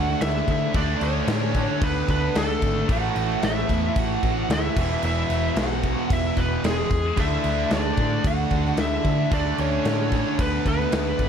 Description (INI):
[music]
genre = hard rock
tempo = 112 BPM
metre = 4/4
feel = straight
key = unclear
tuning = A4 = 441 Hz
[part]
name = high-gain lead guitar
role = melody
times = 0.0-11.3 s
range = G#4 to F#5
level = -28 LUFS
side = left 1 dB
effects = distortion, tape echo
[part]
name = octave-fuzz lead guitar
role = second line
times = 0.0-11.3 s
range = G#3 to F#4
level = -34 LUFS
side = right 3 dB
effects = none
[part]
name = crunchy overdriven guitar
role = riff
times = 0.0-11.3 s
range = E2 to D4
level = -29 LUFS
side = right 12 dB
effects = none
[part]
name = heavy high-gain guitar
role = riff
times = 0.0-11.3 s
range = E2 to D4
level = -32 LUFS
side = equal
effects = distortion
[part]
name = sludgy distorted guitar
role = riff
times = 0.0-11.3 s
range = E2 to D4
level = -30 LUFS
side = left 13 dB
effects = overdrive
[part]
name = hollow-body short-scale picked electric bass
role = bass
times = 0.0-11.3 s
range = E1 to D3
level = -27 LUFS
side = equal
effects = none
[part]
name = big rock drum kit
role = drums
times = 0.1-11.3 s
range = crash cymbal, kick drum, snare drum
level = -26 LUFS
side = equal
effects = none
[sound]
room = light reverb, studio reverb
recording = none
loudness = -20 LUFS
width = side -7 dB against mid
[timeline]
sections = 0.0-11.3 A section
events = none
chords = 0.0 D5; 2.9 A5; 4.8 E; 7.2 D